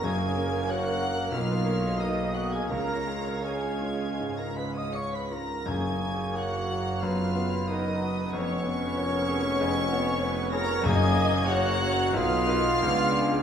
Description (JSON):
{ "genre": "classical", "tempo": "74-98 BPM", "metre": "4/4", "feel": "rubato", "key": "F# major", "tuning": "A4 = 441 Hz", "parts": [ { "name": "clear grand piano", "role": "melody", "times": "0.0-13.4 s", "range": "B1 to D#5", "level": "-31 LUFS", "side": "left 2 dB", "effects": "none" }, { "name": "rich chamber violin section", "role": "melody", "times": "0.0-13.4 s", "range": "C#6 to C#7", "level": "-36 LUFS", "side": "equal", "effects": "none" }, { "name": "dark clarinet", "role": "second line", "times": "0.0-13.4 s", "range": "C#4 to D#5", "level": "-35 LUFS", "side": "right 1 dB", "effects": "none" }, { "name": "hollow concert flute", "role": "second line", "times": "0.0-13.4 s", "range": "C#5 to D#6", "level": "-37 LUFS", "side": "left 2 dB", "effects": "none" }, { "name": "mellow cor anglais", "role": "second line", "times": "0.0-13.4 s", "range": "B4 to E#5", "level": "-38 LUFS", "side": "right 2 dB", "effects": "none" }, { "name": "warm symphonic violin section", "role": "second line", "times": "0.0-13.4 s", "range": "C#5 to D#6", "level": "-38 LUFS", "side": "left 4 dB", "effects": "none" }, { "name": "dark symphonic viola section", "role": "accompaniment", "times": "0.0-13.4 s", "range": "G#4 to D#5", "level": "-36 LUFS", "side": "equal", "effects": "none" }, { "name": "mellow bassoon", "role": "accompaniment", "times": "0.0-13.4 s", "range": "G#3 to B3", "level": "-36 LUFS", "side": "right 2 dB", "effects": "none" }, { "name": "mellow French horn section", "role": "sustained chords", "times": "0.0-13.4 s", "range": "G#3 to E#4", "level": "-36 LUFS", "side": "left 4 dB", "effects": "none" }, { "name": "dark trumpet", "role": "stabs", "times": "0.0-13.4 s", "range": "C#4 to D#5", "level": "-35 LUFS", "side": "right 2 dB", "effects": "none" }, { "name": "mellow tuba", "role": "bass", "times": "0.0-13.4 s", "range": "E#1 to C#2", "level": "-36 LUFS", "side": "right 3 dB", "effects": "none" }, { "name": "warm symphonic cello section", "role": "bass", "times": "0.0-13.4 s", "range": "E#2 to C#3", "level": "-37 LUFS", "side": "right 3 dB", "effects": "none" }, { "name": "rich symphonic double bass section", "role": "bass", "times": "0.1-13.4 s", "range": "E#1 to C#2", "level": "-37 LUFS", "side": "right 2 dB", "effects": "none" }, { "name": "timpani", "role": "percussion", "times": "0.1-6.7, 10.9-11.8 s", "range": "F#2 to C#3", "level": "-34 LUFS", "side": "left 2 dB", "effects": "none" } ], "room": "wet scoring stage reverb, RT60 1.6 s", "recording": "minimal, uncompressed stereo recording", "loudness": "-25 LUFS", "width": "side -8 dB against mid", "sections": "0.0-13.4 A section", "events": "none", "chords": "0.1 F#; 1.3 Bmaj7; 2.7 C#; 5.7 F#; 7.0 B/F#; 8.4 C#7/E#; 10.9 F#; 12.2 B; 12.8 C#7b9", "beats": "| 0.05 0.70 1.34 2.00 | 2.71 3.45 4.21 4.96 | 5.69 6.38 7.04 7.70 | 8.35 8.99 9.61 10.24 | 10.87 11.49 12.15 12.84" }